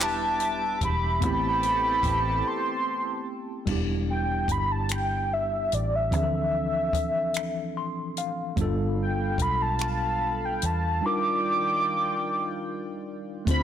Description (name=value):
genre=slow six-eight R&B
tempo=49 BPM (dotted quarters)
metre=6/8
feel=straight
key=unclear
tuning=A4 = 440 Hz
part: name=warm velvety synth lead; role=melody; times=0.0-13.6 s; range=D5 to D6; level=-26 LUFS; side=equal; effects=chorus, slapback echo
part: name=tine electric piano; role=accompaniment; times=0.0-13.6 s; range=E3 to C6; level=-31 LUFS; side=equal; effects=medium stereo tremolo
part: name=chorused pulse-width pad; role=sustained chords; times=0.0-3.7, 8.6-13.5 s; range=Eb3 to D6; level=-36 LUFS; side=left 2 dB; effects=none
part: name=warm horn section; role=stabs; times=0.0-3.2, 13.5-13.6 s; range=C3 to B4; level=-37 LUFS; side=right 4 dB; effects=none
part: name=vintage muted fingered electric bass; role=bass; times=0.0-13.6 s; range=E1 to E2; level=-30 LUFS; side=equal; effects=tube saturation
part: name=compact cocktail drum kit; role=drums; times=0.0-13.6 s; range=crash cymbal, finger snaps, handclaps, hi-hat, kick drum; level=-30 LUFS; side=equal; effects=soft clipping on snare
room=light reverb, studio ambience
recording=blown-out, overdriven recording, overdrive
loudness=-24 LUFS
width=side -10 dB against mid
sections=0.0-3.7 A section; 3.7-13.5 B section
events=break 2.5-3.7; tine electric piano fill 7.3-8.6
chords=0.0 Em7; 1.2 Am7; 3.7 Em7; 6.1 Dm9; 8.6 G9; 11.0 Ebmaj9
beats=0.00 | 1.23 2.45 | 3.67 4.90 | 6.12 7.35 | 8.57 9.80 | 11.02 12.25 | 13.47